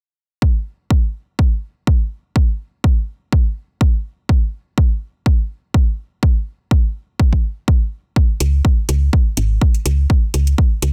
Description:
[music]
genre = minimal techno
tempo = 124 BPM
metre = 4/4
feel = swing 54% on 16ths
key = unclear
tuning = A4 = 440 Hz
[part]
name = electronic kick drum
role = drums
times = 0.4-10.7 s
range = none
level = -16 LUFS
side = equal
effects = none
[part]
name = woody FM bass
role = bass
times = 8.4-10.9 s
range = G#1 to C#2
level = -17 LUFS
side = equal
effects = tube saturation, sidechain pumping
[part]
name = electronic hi-hat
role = drums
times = 8.4-10.9 s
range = none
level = -26 LUFS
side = equal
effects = none
[sound]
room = little or no reverb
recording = none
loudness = -18 LUFS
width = mono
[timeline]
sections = 0.4-10.9 A section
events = none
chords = none

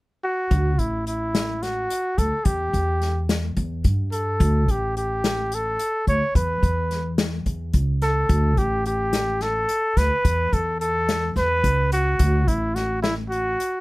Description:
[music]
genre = progressive instrumental, band music in an uneven meter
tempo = 216 BPM (eighths)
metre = 7/8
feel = straight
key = D major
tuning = A4 = 440 Hz
[part]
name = mellow trumpet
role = melody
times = 0.2-13.8 s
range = E4 to C#5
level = -23 LUFS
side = equal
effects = none
[part]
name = upright bass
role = bass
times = 0.5-13.5 s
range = A1 to G2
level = -23 LUFS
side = equal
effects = none
[part]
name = unplugged drum kit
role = drums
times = 0.5-13.7 s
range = hi-hat, kick drum, snare drum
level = -24 LUFS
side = left 1 dB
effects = none
[sound]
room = little or no reverb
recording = close, detailed microphones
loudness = -20 LUFS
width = side -20 dB against mid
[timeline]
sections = 0.5-13.8 A section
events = none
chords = 0.0 N.C.; 0.5 D; 2.5 Em; 4.4 D5; 6.3 E5; 8.3 D5; 10.2 E5; 12.2 D

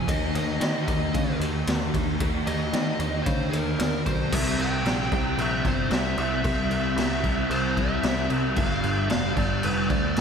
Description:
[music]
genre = rock, shoegaze and dream pop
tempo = 113 BPM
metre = 4/4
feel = straight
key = unclear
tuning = A4 = 440 Hz
[part]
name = fuzz guitar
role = riff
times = 0.0-10.2 s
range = G2 to Eb4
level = -26 LUFS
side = equal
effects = distortion, ensemble chorus
[part]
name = picked electric bass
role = bass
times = 0.0-10.2 s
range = F1 to Eb3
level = -30 LUFS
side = equal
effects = none
[part]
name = fuzz lead guitar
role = melody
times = 0.1-10.2 s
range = Bb4 to G5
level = -31 LUFS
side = right 2 dB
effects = distortion, ping-pong delay
[part]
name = raw garage drum kit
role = drums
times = 0.1-10.2 s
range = crash cymbal, kick drum, ride cymbal, snare drum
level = -27 LUFS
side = equal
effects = none
[sound]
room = moderate lush hall reverb, RT60 1.8 s, studio reverb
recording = dreamy mix soaked in reverb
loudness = -22 LUFS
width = side -6 dB against mid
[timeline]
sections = 0.0-4.3 A section; 4.3-10.2 B section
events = none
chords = 0.1 Eb5; 4.3 C; 8.6 G5

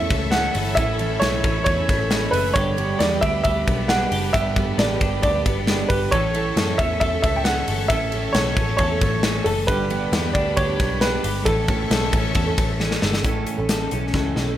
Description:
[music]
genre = jangly indie pop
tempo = 135 BPM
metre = 4/4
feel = straight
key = A mixolydian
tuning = A4 = 440 Hz
[part]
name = clear upright piano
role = melody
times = 0.0-12.8 s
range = A4 to G5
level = -24 LUFS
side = right 1 dB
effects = none
[part]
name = picked steel-string acoustic guitar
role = accompaniment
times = 0.0-14.6 s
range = G2 to A4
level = -28 LUFS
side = right 5 dB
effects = none
[part]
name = clear studio string section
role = sustained chords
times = 0.0-13.2 s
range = D4 to C#6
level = -31 LUFS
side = left 4 dB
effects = none
[part]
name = twelve-string electric guitar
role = arpeggios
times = 0.0-14.6 s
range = G2 to A4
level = -28 LUFS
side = left 2 dB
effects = lush chorus
[part]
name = vintage muted picked electric bass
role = bass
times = 0.0-14.6 s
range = F#1 to F#2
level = -26 LUFS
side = equal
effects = none
[part]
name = big rock drum kit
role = drums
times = 0.1-14.5 s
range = hi-hat, kick drum, ride cymbal, snare drum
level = -23 LUFS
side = equal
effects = none
[sound]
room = light reverb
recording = none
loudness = -18 LUFS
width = side -12 dB against mid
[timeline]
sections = 0.0-13.2 A section; 13.2-14.6 B section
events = drum fill 12.8-13.2, 14.1-14.6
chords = 0.0 A; 2.6 G; 6.1 A; 9.7 G; 11.5 A

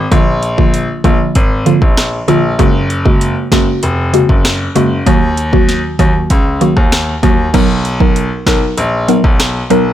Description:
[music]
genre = dancehall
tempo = 97 BPM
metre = 4/4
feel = straight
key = unclear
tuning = A4 = 440 Hz
[part]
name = bright grand piano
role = bass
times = 0.0-9.9 s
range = F1 to Eb2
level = -15 LUFS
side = left 1 dB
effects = none
[part]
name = mallet-like synth pluck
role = accompaniment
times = 0.1-9.8 s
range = Db3 to A#4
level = -13 LUFS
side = equal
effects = chorus, phaser
[part]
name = afro-pop drum kit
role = drums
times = 0.1-9.8 s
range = crash cymbal, hi-hat, kick drum, rim click, snare drum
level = -13 LUFS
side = equal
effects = none
[sound]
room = little or no reverb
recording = blown-out, overdriven recording, overdrive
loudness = -10 LUFS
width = side -11 dB against mid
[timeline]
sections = 0.0-7.5 A section; 7.5-9.9 B section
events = none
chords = 0.1 Bb; 2.6 Gbadd9; 5.1 Ebm; 7.5 Bmaj7

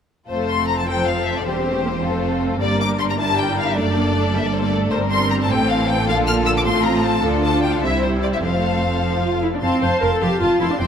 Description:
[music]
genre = quick classical-period movement for string orchestra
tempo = 103 BPM (dotted quarters)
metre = 6/8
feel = straight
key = F major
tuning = A4 = 441 Hz
[part]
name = clear symphonic violin section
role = melody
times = 0.3-10.9 s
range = A4 to F6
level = -23 LUFS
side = left 5 dB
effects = none
[part]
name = warm symphonic violin section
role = second line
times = 0.3-10.9 s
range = C4 to A5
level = -24 LUFS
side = left 3 dB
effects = none
[part]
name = rich symphonic viola section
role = accompaniment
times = 0.3-10.9 s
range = D3 to C5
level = -22 LUFS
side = right 1 dB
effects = none
[part]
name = rich symphonic cello section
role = bass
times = 0.3-10.9 s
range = E2 to D3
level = -25 LUFS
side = right 2 dB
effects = none
[part]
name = rich symphonic double bass section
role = bass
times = 0.3-10.9 s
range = E1 to D2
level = -25 LUFS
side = right 2 dB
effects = none
[sound]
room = moderate scoring stage reverb, RT60 2.1 s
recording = none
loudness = -17 LUFS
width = side -8 dB against mid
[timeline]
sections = 0.3-9.6 A section; 9.6-10.9 A section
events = none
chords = 0.3 F; 1.5 C/E; 2.0 F; 2.6 Gm; 3.8 D/F#; 4.3 Gm; 4.9 C5/G; 5.5 Am7; 6.1 Bb; 6.7 F/A; 7.2 Dm; 7.8 C; 8.4 F

